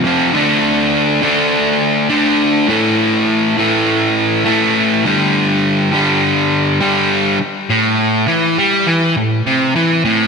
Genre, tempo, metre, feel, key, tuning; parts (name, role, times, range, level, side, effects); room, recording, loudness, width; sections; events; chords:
rock; 102 BPM; 4/4; straight; A minor; A4 = 440 Hz
overdriven electric guitar; solo; 0.0-10.3 s; F2 to D4; -12 LUFS; equal; ping-pong delay
wet lush hall reverb, RT60 2.2 s; bright 1980s-style digital production; -12 LUFS; side -5 dB against mid
0.0-7.7 A section; 7.7-10.3 B section
0.3 D5; 2.7 A5; 5.0 G5; 7.7 A5